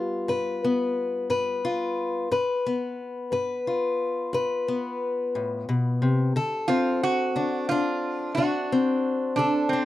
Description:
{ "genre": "acoustic country blues, solo or duo", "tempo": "60 BPM (dotted quarters)", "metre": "12/8", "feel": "straight", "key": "G mixolydian", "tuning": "A4 = 440 Hz", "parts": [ { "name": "fingerpicked acoustic archtop guitar", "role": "accompaniment", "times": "0.0-9.8 s", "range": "G2 to B4", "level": "-24 LUFS", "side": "left 2 dB", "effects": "none" }, { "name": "metal-body resonator slide guitar", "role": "melody", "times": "6.7-9.8 s", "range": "C4 to F#4", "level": "-26 LUFS", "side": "right 4 dB", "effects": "none" } ], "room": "small room ambience", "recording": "dry, close 1970s-style studio recording", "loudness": "-23 LUFS", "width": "side -14 dB against mid", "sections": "0.0-9.8 A section", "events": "none", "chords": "0.0 G7; 6.4 D7" }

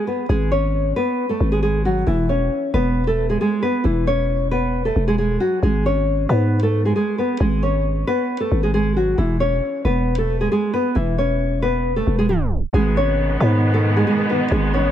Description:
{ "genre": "hip hop", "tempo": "135 BPM", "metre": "4/4", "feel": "half-time", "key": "G# phrygian", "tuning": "A4 = 440 Hz", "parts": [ { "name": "nylon-string guitar", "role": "melody", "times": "0.0-14.9 s", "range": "E3 to C#5", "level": "-20 LUFS", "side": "equal", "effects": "tape echo" }, { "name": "growling 808-style bass", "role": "bass", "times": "0.3-14.9 s", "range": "E1 to G#2", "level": "-20 LUFS", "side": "equal", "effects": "none" }, { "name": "warm studio string section", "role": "sustained chords", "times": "12.7-14.9 s", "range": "G#2 to B3", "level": "-23 LUFS", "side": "right 1 dB", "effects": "none" } ], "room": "small room ambience", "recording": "tape stop", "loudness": "-17 LUFS", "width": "side -10 dB against mid", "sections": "0.0-12.7 A section; 12.7-14.9 B section", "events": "tape stop 12.3-12.7", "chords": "0.0 G#m; 2.1 E; 5.6 G#m; 9.2 E; 12.7 G#m" }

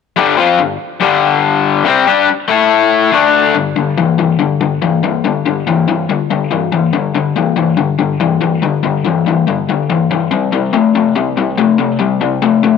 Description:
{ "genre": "rock", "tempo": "142 BPM", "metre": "4/4", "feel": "straight", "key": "unclear", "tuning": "A4 = 440 Hz", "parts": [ { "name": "raw garage guitar", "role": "solo", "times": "0.2-12.8 s", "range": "G2 to A4", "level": "-11 LUFS", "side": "left 7 dB", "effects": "overdrive" } ], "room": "light reverb, digital ambience", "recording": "none", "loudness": "-11 LUFS", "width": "side -6 dB against mid", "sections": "0.2-3.6 A section; 3.6-12.8 B section", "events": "none", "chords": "0.2 G5; 1.9 Csus2; 2.5 A5; 3.1 D5; 3.6 G5; 10.3 C5" }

